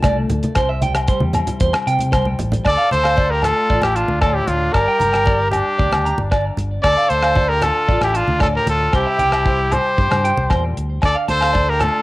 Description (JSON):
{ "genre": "highlife guitar band", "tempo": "115 BPM", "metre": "4/4", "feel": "straight", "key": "D minor", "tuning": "A4 = 440 Hz", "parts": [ { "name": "nylon-string guitar", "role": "accompaniment", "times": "0.0-12.0 s", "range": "A2 to C5", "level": "-29 LUFS", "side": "left 3 dB", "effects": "cassette tape" }, { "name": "clean electric guitar", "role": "arpeggios", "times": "0.0-11.7 s", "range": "C5 to Bb5", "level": "-23 LUFS", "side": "right 3 dB", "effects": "cassette tape, tape echo" }, { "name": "fingered electric bass", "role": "bass", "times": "0.0-11.9 s", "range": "G1 to C3", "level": "-22 LUFS", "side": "equal", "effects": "none" }, { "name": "damped 70s drum kit", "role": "drums", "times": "0.0-11.9 s", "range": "hi-hat, kick drum, rim click", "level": "-20 LUFS", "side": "equal", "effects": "none" }, { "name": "agogo bells", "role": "percussion", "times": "0.0-11.9 s", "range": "none", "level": "-25 LUFS", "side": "left 2 dB", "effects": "none" }, { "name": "congas", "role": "percussion", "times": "0.0-11.9 s", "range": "none", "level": "-25 LUFS", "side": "equal", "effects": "none" }, { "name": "breathy trumpet", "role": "melody", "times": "2.7-12.0 s", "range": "F4 to D5", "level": "-18 LUFS", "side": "equal", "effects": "cassette tape" }, { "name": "brilliant trumpet", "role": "second line", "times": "2.7-12.0 s", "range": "D4 to A4", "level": "-28 LUFS", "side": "left 1 dB", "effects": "cassette tape" } ], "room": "light reverb, studio reverb", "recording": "home recording on cassette", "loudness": "-15 LUFS", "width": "side -18 dB against mid", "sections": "0.0-2.6 A section; 2.6-12.0 B section", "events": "drum fill 2.0-2.6", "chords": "0.0 Dm; 0.6 C; 2.6 Dm; 4.7 Gm; 6.8 Dm; 8.9 C; 11.0 Dm" }